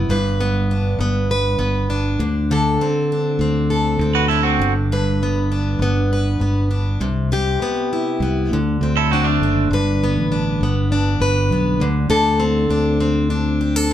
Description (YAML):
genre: pop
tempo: 100 BPM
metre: 4/4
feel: straight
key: G major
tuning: A4 = 439 Hz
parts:
  - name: picked plugged-in steel-string acoustic guitar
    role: accompaniment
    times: 0.0-13.9 s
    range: G2 to B4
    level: -19 LUFS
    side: left 1 dB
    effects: none
  - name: fingered electric bass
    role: bass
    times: 0.0-13.9 s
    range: F#1 to D2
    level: -20 LUFS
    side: equal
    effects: none
  - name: electric guitar at the edge of break-up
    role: second line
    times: 4.1-4.7, 9.0-9.7 s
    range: A3 to B4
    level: -19 LUFS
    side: right 7 dB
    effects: none
room: moderate studio reverb, RT60 0.8 s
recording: band playing live in one room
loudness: -16 LUFS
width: side -11 dB against mid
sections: 0.0-9.7 A section; 9.7-13.9 B section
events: none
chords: 0.1 G; 2.2 D5; 4.6 G; 7.0 Cmaj7; 8.5 D7; 9.7 G; 11.8 D5